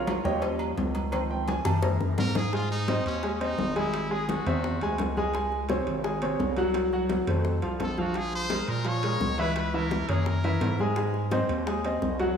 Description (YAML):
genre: Afro-Cuban jazz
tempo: 171 BPM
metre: 4/4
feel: straight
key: Ab major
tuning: A4 = 438 Hz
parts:
  - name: clear baby grand piano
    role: accompaniment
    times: 0.0-12.4 s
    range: C3 to Bb5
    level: -28 LUFS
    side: equal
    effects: none
  - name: growling FM bass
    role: bass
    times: 0.0-12.4 s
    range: Ab1 to Bb2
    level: -30 LUFS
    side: equal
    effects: none
  - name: congas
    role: percussion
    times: 0.1-12.4 s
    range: none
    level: -34 LUFS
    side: left 2 dB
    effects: none
  - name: cowbell and bongos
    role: percussion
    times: 0.1-12.4 s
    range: none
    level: -37 LUFS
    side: left 6 dB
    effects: none
  - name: timbales and agogo bells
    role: percussion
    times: 0.1-12.4 s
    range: none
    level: -39 LUFS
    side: right 5 dB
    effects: none
  - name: brilliant trumpet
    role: melody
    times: 2.2-5.1, 7.8-10.8 s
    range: Db4 to Db5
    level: -33 LUFS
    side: left 1 dB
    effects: none
room: wet lush hall reverb, RT60 2.3 s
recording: rough home demo mix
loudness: -25 LUFS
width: side -7 dB against mid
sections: 0.0-2.5 A section; 2.5-12.4 B section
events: grand piano solo 0.0-2.5; drum fill 1.7-2.5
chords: 0.4 Eb7; 1.1 Dbmaj7; 1.8 Gb7; 2.5 Ab; 3.9 Abaug7; 5.3 Db5; 6.8 Gbdim/C; 7.5 F; 8.2 Bbm7; 9.6 Dbm; 10.3 Gb9; 11.0 Ab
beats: 0.08 0.43 0.78 | 1.13 1.48 1.83 2.18 | 2.53 2.88 3.23 3.59 | 3.94 4.29 4.64 4.99 | 5.34 5.70 6.05 6.40 | 6.75 7.10 7.45 7.80 | 8.15 8.51 8.86 9.21 | 9.56 9.91 10.26 10.62 | 10.97 11.32 11.67 12.02